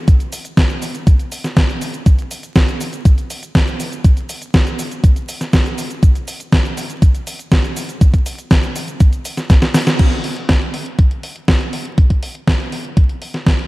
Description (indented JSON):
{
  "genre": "italo disco",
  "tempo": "121 BPM",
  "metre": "4/4",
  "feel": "straight",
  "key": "none",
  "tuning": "none",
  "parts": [
    { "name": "clean 12-bit digital drum machine", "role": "drums", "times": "0.1-13.7 s", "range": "cabasa, crash cymbal, hi-hat, snare drum", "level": "-19 LUFS", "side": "equal", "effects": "studio reverb" },
    { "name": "electronic kick drum", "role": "drums", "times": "0.1-13.6 s", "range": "none", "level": "-12 LUFS", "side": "equal", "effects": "studio reverb" }
  ],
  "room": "light reverb",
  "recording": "vinyl crackle",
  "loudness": "-13 LUFS",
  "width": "side -20 dB against mid",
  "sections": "0.0-10.0 A section; 10.0-13.7 B section",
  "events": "drum fill 9.5-10.0; band accent 9.9",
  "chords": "none"
}